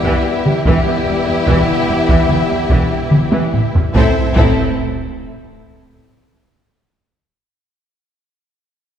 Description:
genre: cinematic, epic orchestral film score.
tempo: 73 BPM.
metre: 4/4.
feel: straight.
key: A minor.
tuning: A4 = 440 Hz.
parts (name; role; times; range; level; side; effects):
warm symphonic violin section; melody; 0.0-4.8 s; G4 to A4; -24 LUFS; left 4 dB; none.
rich symphonic violin section; second line; 0.0-4.8 s; E4; -23 LUFS; left 3 dB; none.
clear symphonic viola section; accompaniment; 0.0-4.8 s; E3 to C4; -23 LUFS; right 2 dB; none.
clear French horn section; sustained chords; 0.0-4.3 s; E3 to C4; -23 LUFS; left 2 dB; none.
rich symphonic string section; sustained chords; 0.0-4.4 s; E4 to E5; -21 LUFS; left 1 dB; none.
taiko ensemble; drums; 0.0-6.0 s; none; -16 LUFS; equal; none.
rich symphonic cello section; bass; 0.1-4.8 s; E2 to A2; -21 LUFS; right 2 dB; none.
clear symphonic double bass section; bass; 0.7-4.8 s; E1 to A1; -22 LUFS; right 1 dB; none.
sub drop; sound effects; 4.2-7.2 s; none; -27 LUFS; equal; none.
room: wet scoring stage reverb, RT60 2.0 s.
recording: heard from further back in the room.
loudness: -12 LUFS.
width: side -9 dB against mid.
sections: 0.0-4.0 A section; 4.0-7.2 B section.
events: drum fill 3.1-4.0; impact 4.0-7.2.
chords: 0.0 Em; 4.0 Am.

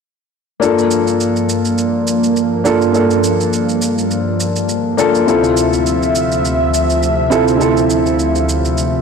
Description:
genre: sunset chillout.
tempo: 103 BPM.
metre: 4/4.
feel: swing 55% on 16ths.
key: unclear.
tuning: A4 = 438 Hz.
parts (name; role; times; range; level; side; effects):
dark grand piano; accompaniment; 0.6-9.0 s; Bb3 to A4; -15 LUFS; moving between left 5 dB and right 5 dB; auto-pan, digital delay.
lush unison pad; sustained chords; 0.6-9.0 s; D2 to E5; -16 LUFS; equal; chorus.
shaker; drums; 0.6-8.9 s; none; -25 LUFS; right 4 dB; overdrive.
room: wet concert hall reverb, RT60 2.5 s.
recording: blown-out, overdriven recording, overdrive.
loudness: -12 LUFS.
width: side -5 dB against mid.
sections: 0.6-9.0 A section.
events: filter sweep on analog synth pad 0.6-9.0.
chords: 0.6 Gm7; 5.3 Dm9.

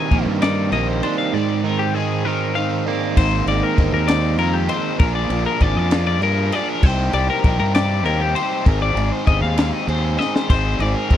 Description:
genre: math rock and midwest emo.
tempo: 66 BPM (dotted quarters).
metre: 6/8.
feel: straight.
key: unclear.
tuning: A4 = 440 Hz.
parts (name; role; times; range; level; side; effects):
twelve-string electric guitar; accompaniment; 0.0-5.0 s; Ab2 to D4; -23 LUFS; right 8 dB; spring reverb.
twelve-string electric guitar; arpeggios; 0.0-11.2 s; G4 to Ab5; -23 LUFS; left 8 dB; none.
biting overdriven guitar; riff; 0.0-11.2 s; Ab2 to Ab4; -23 LUFS; right 1 dB; none.
fuzz fingered electric bass; bass; 0.1-11.2 s; G1 to G2; -21 LUFS; equal; overdrive.
compact cocktail drum kit; drums; 0.1-11.2 s; crash cymbal, kick drum, ride cymbal, snare drum; -17 LUFS; equal; none.
room: little or no reverb.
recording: dry, close 1970s-style studio recording.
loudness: -16 LUFS.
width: side -11 dB against mid.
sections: 0.0-3.2 A section; 3.2-11.2 B section.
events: drum fill 10.2-10.5.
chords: 0.0 Cm9; 1.3 Abadd9; 3.2 Abmaj9; 5.0 Bb7; 6.8 Cm9; 8.7 Abadd9.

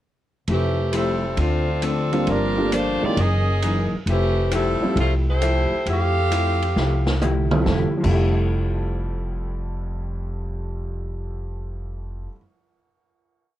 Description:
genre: jazz, big band swing.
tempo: 134 BPM.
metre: 4/4.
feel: swing 67% on 8ths.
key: F major.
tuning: A4 = 440 Hz.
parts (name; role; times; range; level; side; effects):
bright saxophone section; melody; 0.5-7.2 s; E3 to F5; -23 LUFS; equal; none.
vintage hollow-body jazz guitar; accompaniment; 0.5-12.4 s; Gb2 to G4; -27 LUFS; left 2 dB; none.
upright bass; bass; 0.5-12.3 s; F1 to F2; -23 LUFS; equal; none.
swinging big-band drum kit; drums; 0.5-8.1 s; crash cymbal, hi-hat, kick drum, ride cymbal, snare drum, toms; -30 LUFS; right 1 dB; none.
warm baby grand piano; accompaniment; 2.1-12.4 s; F2 to F4; -26 LUFS; right 1 dB; none.
room: light reverb.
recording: worn, warbling old tape, cassette tape, warbly pitch drift.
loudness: -19 LUFS.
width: side -13 dB against mid.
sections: 0.5-7.7 A section; 7.7-11.3 final chord.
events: drum fill 6.8-7.7.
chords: 0.5 Fmaj9; 1.4 Dm7; 2.3 Gm7; 3.2 Gb13; 4.1 Fmaj9.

